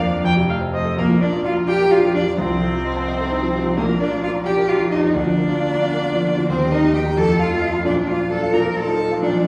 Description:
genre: quick classical-period movement for piano quartet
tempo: 87 BPM (dotted quarters)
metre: 6/8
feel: rubato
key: Bb major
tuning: A4 = 440 Hz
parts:
  - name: rich violin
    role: melody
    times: 0.0-9.5 s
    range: Bb4 to Bb5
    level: -31 LUFS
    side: equal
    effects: none
  - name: clear cello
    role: second line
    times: 0.0-9.5 s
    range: F3 to Bb4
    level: -23 LUFS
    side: equal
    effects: none
  - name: clear concert grand piano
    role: accompaniment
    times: 0.0-9.5 s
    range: Bb1 to Bb5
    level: -22 LUFS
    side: equal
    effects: none
  - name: rich viola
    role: accompaniment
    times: 0.0-9.5 s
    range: F3 to G5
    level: -29 LUFS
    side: equal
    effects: none
room: wet recital hall reverb, RT60 1.4 s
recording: heard from further back in the room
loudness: -19 LUFS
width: mono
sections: 1.0-9.5 A section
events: none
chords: 0.2 F; 1.0 Bb; 2.4 F7/C; 3.8 Bb; 5.1 Bb/D; 6.5 Eb6; 7.2 F7; 7.9 Bb; 8.5 F7/Bb

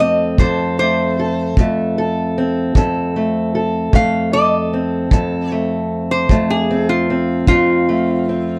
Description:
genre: acoustic country blues, solo or duo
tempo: 51 BPM (dotted quarters)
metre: 12/8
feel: straight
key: F major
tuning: A4 = 440 Hz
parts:
  - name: lap resonator guitar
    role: melody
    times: 0.0-8.6 s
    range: F4 to F5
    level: -19 LUFS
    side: equal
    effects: none
  - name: fingerpicked steel-string acoustic guitar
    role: accompaniment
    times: 0.0-8.6 s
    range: F2 to A4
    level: -20 LUFS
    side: equal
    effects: none
  - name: kick drum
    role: drums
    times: 0.4-7.7 s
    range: none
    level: -15 LUFS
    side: equal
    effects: none
room: little or no reverb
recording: none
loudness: -17 LUFS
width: mono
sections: 0.0-8.6 A section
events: none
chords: 0.0 F

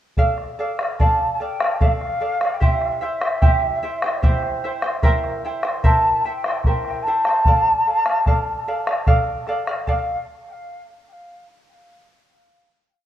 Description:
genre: andean folk, Andean ensemble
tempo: 74 BPM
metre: 3/4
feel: straight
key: D minor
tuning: A4 = 440 Hz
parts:
  - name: charango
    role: accompaniment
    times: 0.2-10.2 s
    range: E4 to G5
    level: -24 LUFS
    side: right 2 dB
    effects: none
  - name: bombo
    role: percussion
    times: 0.2-10.2 s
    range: none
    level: -19 LUFS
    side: equal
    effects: none
  - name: large quena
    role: melody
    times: 1.0-10.2 s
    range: C5 to A5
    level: -22 LUFS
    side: equal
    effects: analog delay
room: light reverb, small room reverb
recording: rough home demo mix, cassette tape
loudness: -17 LUFS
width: side -11 dB against mid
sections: 0.2-9.9 A section; 9.9-12.3 final chord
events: none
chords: 0.2 Dm; 2.6 C; 5.0 C7; 7.5 Dm

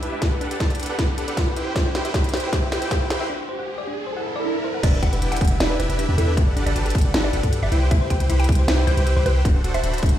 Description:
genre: future bass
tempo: 156 BPM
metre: 4/4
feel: half-time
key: E minor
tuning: A4 = 438 Hz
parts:
  - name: thumb-piano-like synth pluck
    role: arpeggios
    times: 0.0-10.1 s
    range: D4 to G5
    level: -31 LUFS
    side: left 4 dB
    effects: chorus, sidechain pumping, ping-pong delay
  - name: supersaw chords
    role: riff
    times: 0.0-10.2 s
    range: D4 to B5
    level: -27 LUFS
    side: right 1 dB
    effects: cassette tape, sidechain pumping, low-pass filter, ping-pong delay
  - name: trap drum kit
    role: drums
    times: 0.0-10.2 s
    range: crash cymbal, hi-hat, snare drum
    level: -27 LUFS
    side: equal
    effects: studio ambience
  - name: riser, swell and impact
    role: sound effects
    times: 0.2-6.4 s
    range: none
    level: -30 LUFS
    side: right 1 dB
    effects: none
  - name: electronic kick drum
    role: drums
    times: 0.2-10.1 s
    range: none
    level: -20 LUFS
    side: equal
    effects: studio ambience
  - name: mallet-like synth pluck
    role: melody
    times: 4.8-10.0 s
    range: A4 to G5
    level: -29 LUFS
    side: right 1 dB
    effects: chorus, phaser, sidechain pumping, ping-pong delay
  - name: warm 808-style bass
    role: bass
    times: 4.8-10.2 s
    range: D1 to G2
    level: -21 LUFS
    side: equal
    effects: tube saturation, sidechain pumping
room: light reverb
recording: played on a big sound system in a bare room, stone room reverb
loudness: -19 LUFS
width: side -12 dB against mid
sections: 0.0-4.8 A section; 4.8-10.2 B section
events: build-up 0.0-4.8; drum fill 0.0-3.3; riser 0.2-4.8; break 3.3-4.8; swell 4.1-4.8; drop 4.8-10.2; impact 4.8-6.4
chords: 0.2 Gmaj9; 1.6 Cmaj7; 3.3 D7(no3); 4.8 Em7; 6.4 Gmaj9; 7.7 Cmaj7; 9.4 D7

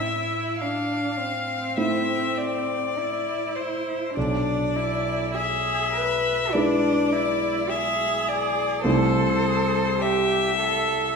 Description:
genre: classical, slow romantic movement for piano trio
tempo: 51 BPM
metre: 4/4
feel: rubato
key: A minor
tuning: A4 = 440 Hz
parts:
  - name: clear violin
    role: melody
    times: 0.0-11.2 s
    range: C5 to F5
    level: -25 LUFS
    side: left 4 dB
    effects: none
  - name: rich cello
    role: second line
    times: 0.0-11.2 s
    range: C4 to B4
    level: -26 LUFS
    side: right 3 dB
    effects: none
  - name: warm concert grand piano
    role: accompaniment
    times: 0.0-11.2 s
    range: B1 to C5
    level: -27 LUFS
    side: equal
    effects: none
room: wet recital hall reverb, RT60 1.3 s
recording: heard from further back in the room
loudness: -21 LUFS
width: side -5 dB against mid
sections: 0.0-11.2 A section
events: none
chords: 0.0 Am; 4.2 E7/B; 8.8 Am/C

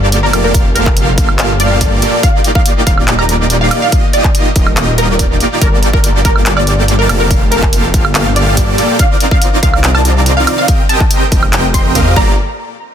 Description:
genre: future bass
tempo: 142 BPM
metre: 4/4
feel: half-time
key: G minor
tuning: A4 = 440 Hz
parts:
  - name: wide unison pluck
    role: melody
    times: 0.0-12.3 s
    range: Bb4 to C6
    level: -18 LUFS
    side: equal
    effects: ensemble chorus, sidechain pumping, tape echo
  - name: airy dreamy lead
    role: arpeggios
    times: 0.0-12.3 s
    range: D5 to G5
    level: -23 LUFS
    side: left 1 dB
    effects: chorus, sidechain pumping
  - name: dense compressed supersaw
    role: riff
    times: 0.0-12.3 s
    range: Bb3 to G5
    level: -15 LUFS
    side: right 1 dB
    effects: sidechain pumping
  - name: wide detuned saw bass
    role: bass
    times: 0.0-12.4 s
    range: Eb1 to F2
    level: -14 LUFS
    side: equal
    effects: chorus, sidechain pumping
  - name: big-room dance drum kit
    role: drums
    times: 0.1-12.0 s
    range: handclaps, hi-hat, woodblock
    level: -16 LUFS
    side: right 1 dB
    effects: none
  - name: electronic kick drum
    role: drums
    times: 0.5-12.2 s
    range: none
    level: -12 LUFS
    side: equal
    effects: none
room: digital ambience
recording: dense, heavily limited modern master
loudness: -9 LUFS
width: side -9 dB against mid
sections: 0.0-12.4 A section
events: drop 0.0-12.4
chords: 0.0 Gm9; 2.2 Ebmaj9; 5.6 Gm9; 9.0 Cm11; 10.7 F9sus4; 12.2 Gm9; 12.4 N.C.

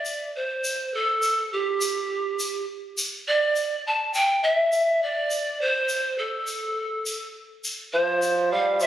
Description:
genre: andean folk, Andean ensemble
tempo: 103 BPM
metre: 4/4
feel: straight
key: A minor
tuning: A4 = 441 Hz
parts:
  - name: breathy pan flute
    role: melody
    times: 0.0-8.9 s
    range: G4 to A5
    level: -23 LUFS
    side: right 1 dB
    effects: none
  - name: tube shaker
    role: percussion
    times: 0.1-8.9 s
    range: none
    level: -32 LUFS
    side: left 1 dB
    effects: none
  - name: mellow bassoon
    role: second line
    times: 7.9-8.9 s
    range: F3 to G3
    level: -22 LUFS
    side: right 2 dB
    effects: none
room: moderate concert hall reverb, RT60 1.8 s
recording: recorded on a phone in the room, club reverb, compression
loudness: -22 LUFS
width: side -12 dB against mid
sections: 0.0-8.9 A section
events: none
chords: none

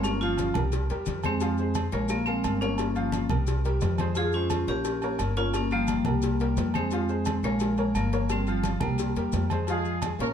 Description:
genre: latin, salsa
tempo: 174 BPM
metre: 4/4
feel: straight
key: F minor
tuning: A4 = 440 Hz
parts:
  - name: vibraphone with hard mallets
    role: melody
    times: 0.0-9.5 s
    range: F3 to Ab4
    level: -28 LUFS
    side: equal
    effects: none
  - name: bright upright piano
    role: accompaniment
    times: 0.0-10.3 s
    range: F3 to Db6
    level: -32 LUFS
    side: left 1 dB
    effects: none
  - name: upright bass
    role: bass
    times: 0.0-10.3 s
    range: G1 to F2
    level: -29 LUFS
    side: equal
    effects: none
  - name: agogo bells and timbales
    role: percussion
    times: 0.0-10.2 s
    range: none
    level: -36 LUFS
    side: right 5 dB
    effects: none
  - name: congas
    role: percussion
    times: 0.0-10.3 s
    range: none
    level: -34 LUFS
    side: left 1 dB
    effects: none
  - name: cowbell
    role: percussion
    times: 0.0-10.3 s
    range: none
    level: -38 LUFS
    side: left 8 dB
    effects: none
  - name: maracas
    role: percussion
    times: 0.0-10.3 s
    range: none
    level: -46 LUFS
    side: left 8 dB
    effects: none
  - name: warm horn section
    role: melody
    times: 9.7-10.3 s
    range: Ab3 to Bb4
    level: -31 LUFS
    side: equal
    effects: none
room: moderate studio reverb, RT60 0.9 s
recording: dark, warm production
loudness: -24 LUFS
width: side -8 dB against mid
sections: 0.0-9.7 A section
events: none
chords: 0.0 Gm7b5; 0.7 C7; 1.4 Fm; 2.1 Bbm; 2.8 Gm7b5; 3.5 C5; 4.2 Fm; 4.9 Bbm; 5.5 Gm7b5; 6.2 C5; 6.9 Fm; 7.6 Bbm; 8.3 Gm7b5; 9.0 C7; 9.7 Fm

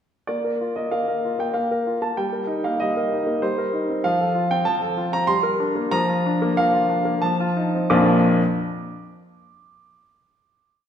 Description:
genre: classical-period piano sonatina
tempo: 86-98 BPM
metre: 3/4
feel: straight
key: Bb major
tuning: A4 = 440 Hz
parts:
  - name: clear baby grand piano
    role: solo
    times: 0.3-8.4 s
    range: Bb1 to D6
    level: -19 LUFS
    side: equal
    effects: none
room: wet recital hall reverb, RT60 1.6 s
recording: none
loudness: -19 LUFS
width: side -8 dB against mid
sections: 0.3-7.9 A section; 7.9-9.9 final chord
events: none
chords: 0.3 Bb5; 2.2 Eb/G; 3.4 Cm7/G; 4.0 F; 5.3 Gm; 5.9 Bb/F; 7.2 F7; 7.9 Bb

